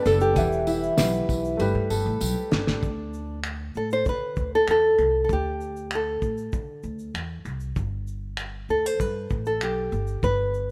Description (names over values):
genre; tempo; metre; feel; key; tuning
acoustic pop; 97 BPM; 4/4; straight; unclear; A4 = 440 Hz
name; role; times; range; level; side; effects
nylon-string guitar; melody; 0.0-10.7 s; G4 to C5; -26 LUFS; equal; none
picked steel-string acoustic guitar; accompaniment; 0.0-3.4 s; E3 to B4; -30 LUFS; equal; none
warm upright piano; accompaniment; 0.0-2.9 s; G3 to F#5; -34 LUFS; equal; none
upright bass; bass; 0.1-10.7 s; E1 to D3; -32 LUFS; equal; none
cloth-damped thuddy drum kit; drums; 0.1-10.7 s; finger snaps, kick drum, shaker, snare drum; -30 LUFS; equal; none
tambourine; percussion; 0.1-2.4 s; none; -42 LUFS; equal; none
room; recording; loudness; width
light reverb; rough home demo mix; -25 LUFS; mono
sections
0.0-2.8 A section; 2.8-10.7 B section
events
drum fill 1.6-2.8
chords
0.4 Emadd9; 1.6 Gadd9; 2.8 D5; 7.8 G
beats
| 0.36 0.98 1.60 2.21 | 2.83 3.45 4.06 4.68 | 5.30 5.91 6.53 7.15 | 7.76 8.38 9.00 9.62 | 10.23